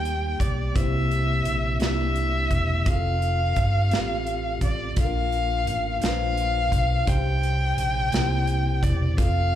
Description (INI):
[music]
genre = slow gospel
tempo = 57 BPM (dotted quarters)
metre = 6/8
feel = straight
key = unclear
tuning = A4 = 440 Hz
[part]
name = rich violin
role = melody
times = 0.0-9.6 s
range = D5 to G5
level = -27 LUFS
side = left 2 dB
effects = slapback echo
[part]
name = mellow tine electric piano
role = accompaniment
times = 0.0-9.6 s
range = C3 to D5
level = -29 LUFS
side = left 1 dB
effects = medium stereo tremolo, slapback echo
[part]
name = fingered electric bass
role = bass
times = 0.0-9.6 s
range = E1 to Eb2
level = -25 LUFS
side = equal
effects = none
[part]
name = modern studio drum kit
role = drums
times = 0.1-9.3 s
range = hi-hat, kick drum, snare drum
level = -26 LUFS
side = equal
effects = none
[sound]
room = little or no reverb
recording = live gig heard through the venue's PA, club reverb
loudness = -21 LUFS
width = side -11 dB against mid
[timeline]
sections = 0.0-9.6 A section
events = none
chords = 0.0 Eb; 0.8 C7; 2.9 F; 5.0 Bb; 7.1 Cm; 8.1 C7